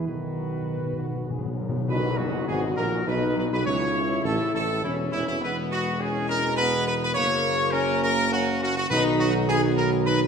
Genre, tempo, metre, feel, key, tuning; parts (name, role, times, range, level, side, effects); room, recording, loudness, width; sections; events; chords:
classical, ceremonial fanfare; 103 BPM; 3/4; straight; B major; A4 = 440 Hz
warm trumpet section; melody; 0.0-10.2 s; E4 to C#5; -26 LUFS; equal
clear French horn section; sustained chords; 0.0-10.3 s; A#3 to B4; -29 LUFS; left 2 dB
dark trombone section; sustained chords; 0.0-10.3 s; E2 to A#3; -31 LUFS; right 3 dB
dark tuba; bass; 0.0-10.3 s; E1 to C#2; -28 LUFS; right 2 dB
timpani; percussion; 0.1-2.7, 8.9-9.7 s; B2; -32 LUFS; left 1 dB
tam-tam; percussion; 1.9-4.2 s; -36 LUFS; left 3 dB
wet scoring stage reverb, RT60 1.8 s; minimal, uncompressed stereo recording; -22 LUFS; side -6 dB against mid
0.0-1.9 A section; 1.9-10.3 A section
timpani fill 0.1-1.9; band accent 1.9-2.5
0.1 B; 3.7 A; 5.4 E; 7.2 F#; 8.9 B